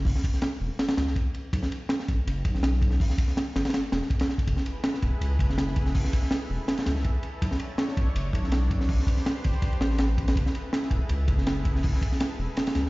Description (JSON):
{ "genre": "drum and bass, jungle", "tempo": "163 BPM", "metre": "4/4", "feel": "swing 53% on 16ths", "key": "F# minor", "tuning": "A4 = 438 Hz", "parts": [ { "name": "saturated sub bass", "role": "bass", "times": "0.0-12.8 s", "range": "E1 to C#2", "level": "-27 LUFS", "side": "equal", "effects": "none" }, { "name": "crunchy breakbeat drum kit", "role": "drums", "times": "0.1-12.9 s", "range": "hi-hat, kick drum, ride cymbal, snare drum", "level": "-25 LUFS", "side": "equal", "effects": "none" }, { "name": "lush unison pad", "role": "sustained chords", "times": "4.5-12.9 s", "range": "D4 to C#5", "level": "-38 LUFS", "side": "equal", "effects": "chorus" } ], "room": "small room ambience", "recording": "played on a big sound system in a bare room, stone room reverb, nothing above 7.6 kHz", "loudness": "-24 LUFS", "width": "side -21 dB against mid", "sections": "0.0-12.9 A section", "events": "none", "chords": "0.0 F#5; 1.5 B5; 3.0 A5; 4.5 F#m11; 7.4 Bm11; 8.9 Am11; 10.4 F#m11", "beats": "| 0.06 0.42 0.79 1.16 | 1.53 1.90 2.27 2.63 | 3.00 3.37 3.74 4.11 | 4.47 4.84 5.21 5.58 | 5.95 6.32 6.68 7.05 | 7.42 7.79 8.15 8.52 | 8.89 9.26 9.63 10.00 | 10.36 10.73 11.10 11.47 | 11.84 12.20 12.57" }